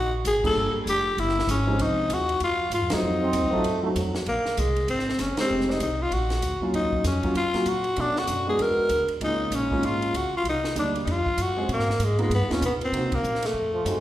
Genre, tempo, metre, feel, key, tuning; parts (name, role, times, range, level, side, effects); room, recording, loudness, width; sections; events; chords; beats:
jazz, small-group swing and bop; 194 BPM; 4/4; swing 61% on 8ths; Bb minor; A4 = 440 Hz
growling tenor saxophone; melody; 0.0-14.0 s; Ab3 to Bb4; -25 LUFS; left 1 dB
upright bass; bass; 0.0-14.0 s; F1 to C3; -29 LUFS; equal
compact cocktail drum kit; drums; 0.2-13.9 s; crash cymbal, hi-hat, kick drum, ride cymbal, snare drum; -35 LUFS; equal
warm concert grand piano; accompaniment; 0.4-14.0 s; F3 to A4; -29 LUFS; right 1 dB
breathy trombone; second line; 3.2-4.2, 13.7-14.0 s; F3 to C4; -29 LUFS; right 4 dB
wet recital hall reverb, RT60 1.4 s; recorded in a church or concert hall; -22 LUFS; side -13 dB against mid
0.0-4.3 A section; 4.3-14.0 B section
band accent 0.4, 2.9, 5.3, 13.1
0.0 Ebmadd9 (rootless); 0.6 Gm7; 1.2 Gbsus2; 1.8 Fm7; 3.0 F7b9; 4.3 Bbsus2; 5.5 Fm9; 6.1 Bb; 6.7 Ebm9; 8.0 Bm7; 8.6 E9; 9.2 Absus4; 10.5 Cm9; 11.1 F5; 11.7 Bb5; 12.3 G7alt; 12.9 Cm7b5
0.25 | 0.56 0.87 1.18 1.49 | 1.80 2.10 2.41 2.72 | 3.03 3.34 3.65 3.96 | 4.26 4.57 4.88 5.19 | 5.50 5.81 6.12 6.43 | 6.74 7.05 7.36 7.67 | 7.97 8.29 8.59 8.90 | 9.21 9.52 9.83 10.14 | 10.45 10.76 11.07 11.38 | 11.69 12.00 12.31 12.62 | 12.93 13.24 13.55 13.86